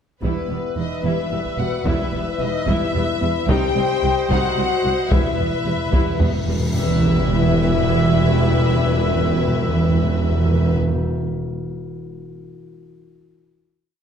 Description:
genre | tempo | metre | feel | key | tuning
cinematic, epic orchestral film score | 74 BPM (dotted quarters) | 6/8 | straight | E harmonic minor | A4 = 442 Hz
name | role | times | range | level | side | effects
warm symphonic violin section | melody | 0.2-10.8 s | B4 to C5 | -28 LUFS | left 6 dB | none
warm symphonic violin section | second line | 0.2-10.7 s | B4 to G5 | -27 LUFS | left 4 dB | none
rich symphonic viola section | accompaniment | 0.2-10.8 s | G3 to E4 | -29 LUFS | right 1 dB | none
clear woodwind section | sustained chords | 0.2-10.7 s | G3 to E5 | -30 LUFS | equal | none
warm French horn section | sustained chords | 0.2-10.7 s | B3 to G4 | -27 LUFS | left 6 dB | none
rich symphonic double bass section | bass | 0.2-10.7 s | E1 to C2 | -25 LUFS | right 4 dB | none
warm symphonic cello section | bass | 0.2-10.7 s | C2 to E2 | -24 LUFS | right 3 dB | none
taiko ensemble | drums | 0.2-6.5 s | none | -22 LUFS | equal | none
timpani | percussion | 5.1-11.0 s | E2 | -21 LUFS | equal | none
cymbal swell and sub drop | sound effects | 6.2-8.4 s | none | -30 LUFS | left 1 dB | none
room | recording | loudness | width
wet scoring stage reverb, RT60 1.7 s | none | -17 LUFS | side -8 dB against mid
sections
0.2-6.7 theme; 6.7-10.0 final chord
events
timpani fill 5.1-6.7; cymbal swell 6.2-6.7; impact 6.7-8.4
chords
0.2 Em; 3.5 Cm; 5.1 Em

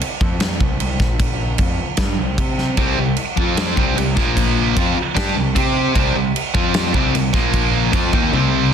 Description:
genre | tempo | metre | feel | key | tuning
hard rock | 151 BPM | 4/4 | straight | C minor | A4 = 440 Hz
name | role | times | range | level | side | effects
big rock drum kit | drums | 0.0-8.4 s | crash cymbal, kick drum, snare drum, toms | -19 LUFS | equal | none
fuzz picked electric bass | bass | 0.2-8.7 s | Bb1 to C3 | -22 LUFS | equal | overdrive
overdriven semi-hollow guitar | riff | 2.8-8.7 s | Bb2 to C5 | -22 LUFS | left 13 dB | spring reverb
tight distorted guitar | riff | 2.8-8.7 s | Bb2 to C5 | -20 LUFS | right 11 dB | distortion
room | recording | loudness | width
little or no reverb | dense, heavily limited modern master | -15 LUFS | side -8 dB against mid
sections
0.0-8.7 A section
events
drum fill 8.3-8.7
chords
0.2 N.C.; 1.6 C5; 3.4 F5; 3.8 C5; 4.2 Bb5; 4.8 C5; 6.5 F5; 6.9 C5; 7.3 Bb5; 7.9 Cm

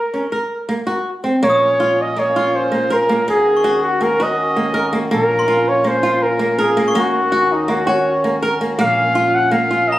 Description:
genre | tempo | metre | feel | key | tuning
contemporary instrumental, chamber music in an uneven meter | 163 BPM | 5/4 | straight | unclear | A4 = 441 Hz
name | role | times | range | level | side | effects
warm flugelhorn | melody | 0.0-10.0 s | Eb4 to Gb5 | -16 LUFS | equal | none
flamenco guitar | arpeggios | 0.1-9.9 s | Bb3 to Bb4 | -20 LUFS | right 1 dB | none
upright bass | bass | 1.4-10.0 s | Bb1 to Eb2 | -30 LUFS | equal | none
pedal harmonium | sustained chords | 1.5-10.0 s | Eb3 to Gb4 | -23 LUFS | left 1 dB | none
glockenspiel with brass mallets | texture | 1.5-7.1, 9.9-10.0 s | Bb5 to Eb6 | -28 LUFS | left 5 dB | none
room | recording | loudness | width
light reverb | recorded on a phone in the room, studio reverb, compression | -14 LUFS | side -15 dB against mid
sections
0.0-1.4 A section; 1.4-10.0 B section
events
none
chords
0.0 Bbmadd9; 1.4 Bbm; 3.3 Ebm7; 5.1 Bbm; 7.0 Ebm7; 8.8 Bbm

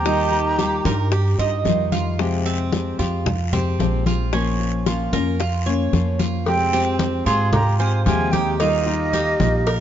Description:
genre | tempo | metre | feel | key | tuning
latin, Cuban son and guajira | 112 BPM | 4/4 | straight | F minor | A4 = 440 Hz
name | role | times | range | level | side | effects
breathy concert flute | melody | 0.0-1.4, 6.5-9.8 s | Eb5 to C6 | -23 LUFS | right 1 dB | slapback echo
warm trumpet | second line | 0.0-1.4, 6.5-9.8 s | Bb3 to Ab4 | -28 LUFS | right 4 dB | slapback echo
nylon-string guitar | accompaniment | 0.0-9.7 s | C3 to G4 | -25 LUFS | left 6 dB | none
Cuban tres | arpeggios | 0.0-9.8 s | C4 to Eb5 | -26 LUFS | right 7 dB | none
upright bass | bass | 0.0-9.8 s | Bb1 to Ab2 | -22 LUFS | right 1 dB | none
bongos and cowbell | percussion | 0.1-9.8 s | none | -28 LUFS | left 6 dB | none
congas | percussion | 0.1-9.8 s | none | -26 LUFS | left 2 dB | none
guiro | percussion | 0.1-9.8 s | none | -37 LUFS | left 6 dB | none
room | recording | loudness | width
light reverb | nothing above 7.5 kHz | -18 LUFS | side -10 dB against mid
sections
0.0-6.5 A section; 6.5-9.8 B section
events
none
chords
0.1 Ebadd9; 2.2 Fmadd9; 4.3 Bbm; 6.5 Fmadd9; 8.6 Ebadd9

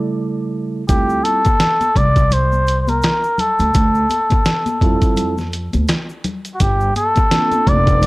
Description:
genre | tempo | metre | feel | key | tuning
hip hop, jazz-hop | 84 BPM | 4/4 | swing 58% on 16ths | D minor | A4 = 440 Hz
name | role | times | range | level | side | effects
trumpet with cup mute | melody | 0.0-8.1 s | F#4 to D5 | -17 LUFS | equal | none
mellow tine electric piano | accompaniment | 0.0-8.1 s | C#3 to A4 | -21 LUFS | right 3 dB | none
upright bass | bass | 0.9-8.1 s | F1 to F2 | -18 LUFS | equal | none
trip hop sampler-style drum kit | drums | 0.9-8.1 s | hi-hat, kick drum, snare drum | -17 LUFS | equal | none
tube shaker and congas | percussion | 0.9-8.1 s | none | -27 LUFS | left 3 dB | none
room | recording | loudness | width
little or no reverb | dry, gritty hardware recording | -14 LUFS | side -20 dB against mid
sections
0.9-8.1 A section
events
break 0.0-0.9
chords
0.0 A7; 0.9 Dm11; 6.6 Gm11

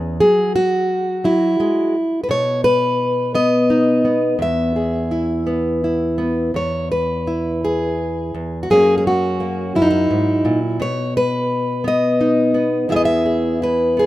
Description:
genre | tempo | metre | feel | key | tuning
folk, solo fingerstyle acoustic guitar | 57 BPM (dotted quarters) | 6/8 | rubato | E major | A4 = 439 Hz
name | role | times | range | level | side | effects
fingerpicked plugged-in steel-string acoustic guitar | solo | 0.0-14.1 s | E2 to E5 | -15 LUFS | equal | none
room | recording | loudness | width
light reverb | rough home demo mix | -16 LUFS | side -15 dB against mid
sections
0.0-6.6 A section; 6.6-14.1 A section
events
none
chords
0.2 Eadd9/F#; 2.3 B; 4.4 E; 6.6 N.C.; 8.7 F#7; 10.8 B; 12.9 E

